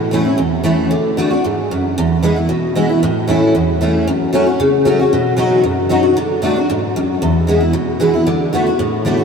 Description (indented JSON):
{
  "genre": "bluegrass",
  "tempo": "229 BPM",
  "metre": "4/4",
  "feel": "straight",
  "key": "A major",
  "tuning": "A4 = 440 Hz",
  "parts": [
    { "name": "picked steel-string acoustic guitar", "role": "solo", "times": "0.0-9.2 s", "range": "E2 to F#4", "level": "-13 LUFS", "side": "equal", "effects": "ensemble chorus" }
  ],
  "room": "wet huge ambient reverb, RT60 7.7 s",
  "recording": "dreamy mix soaked in reverb",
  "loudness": "-13 LUFS",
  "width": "side -6 dB against mid",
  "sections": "0.0-4.1 A section; 4.1-9.2 B section",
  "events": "none",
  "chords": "0.0 A; 0.9 D; 2.0 E; 3.0 A; 4.1 F#m; 5.1 B; 6.2 D; 7.2 E; 8.3 D6"
}